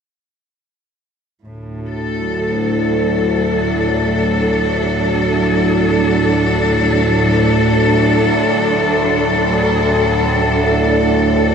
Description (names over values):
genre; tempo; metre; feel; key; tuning
dark ambient drone; free time; none; none; D major; A4 = 441 Hz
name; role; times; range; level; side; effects
overtone-sweeping drone; drone; 1.7-11.5 s; D2 to A2; -16 LUFS; right 1 dB; chorus, built-in reverb
wind-like tuned noise texture; texture; 1.8-11.5 s; A4; -29 LUFS; left 1 dB; none
clear studio cello section; sustained chords; 1.5-11.5 s; A2 to A4; -16 LUFS; left 1 dB; none
room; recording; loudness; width
wet huge ambient reverb, RT60 8.1 s; dreamy mix soaked in reverb; -13 LUFS; side -6 dB against mid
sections
1.5-11.5 A section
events
none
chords
1.5 D